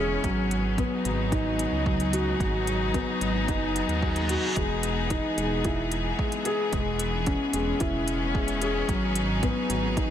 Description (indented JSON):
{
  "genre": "piano and strings electronica",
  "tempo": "111 BPM",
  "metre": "4/4",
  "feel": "straight",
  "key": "G# minor",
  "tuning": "A4 = 443 Hz",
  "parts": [
    { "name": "clear chamber string section", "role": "sustained chords", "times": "0.0-10.1 s", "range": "E3 to G#4", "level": "-30 LUFS", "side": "left 3 dB", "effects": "none" },
    { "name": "felt-muted upright piano", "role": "riff", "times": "0.0-10.1 s", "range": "F#3 to G#4", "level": "-28 LUFS", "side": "left 1 dB", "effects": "tape echo" },
    { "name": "dark detuned saw bass", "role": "bass", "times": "0.0-10.1 s", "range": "E1 to D#2", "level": "-31 LUFS", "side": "right 1 dB", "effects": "sidechain pumping" },
    { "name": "electronic hi-hat", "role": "drums", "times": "0.2-10.1 s", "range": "none", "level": "-35 LUFS", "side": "equal", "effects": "overdrive" },
    { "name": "electronic kick drum", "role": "drums", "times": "0.2-10.1 s", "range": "none", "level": "-30 LUFS", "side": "right 1 dB", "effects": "overdrive" },
    { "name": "reverse cymbal", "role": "sound effects", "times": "3.8-4.6 s", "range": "none", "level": "-38 LUFS", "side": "right 3 dB", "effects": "none" }
  ],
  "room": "light reverb, digital ambience",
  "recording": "none",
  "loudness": "-24 LUFS",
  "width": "side -10 dB against mid",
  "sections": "0.0-10.1 A section",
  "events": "reverse cymbal 3.8-4.6",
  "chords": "0.2 G#m7; 4.6 Emaj7; 6.7 C#m7/E; 8.9 G#m7"
}